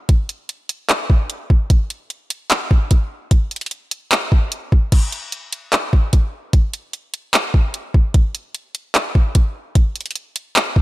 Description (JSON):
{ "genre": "hip hop", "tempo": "149 BPM", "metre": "4/4", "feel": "half-time", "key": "none", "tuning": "none", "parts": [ { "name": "smooth R&B drum kit", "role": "drums", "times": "0.1-10.8 s", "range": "crash cymbal, handclaps, hi-hat, kick drum", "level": "-14 LUFS", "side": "equal", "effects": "none" } ], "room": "digital ambience", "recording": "none", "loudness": "-16 LUFS", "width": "side -18 dB against mid", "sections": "0.0-4.9 A section; 4.9-10.8 B section", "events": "none", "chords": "none" }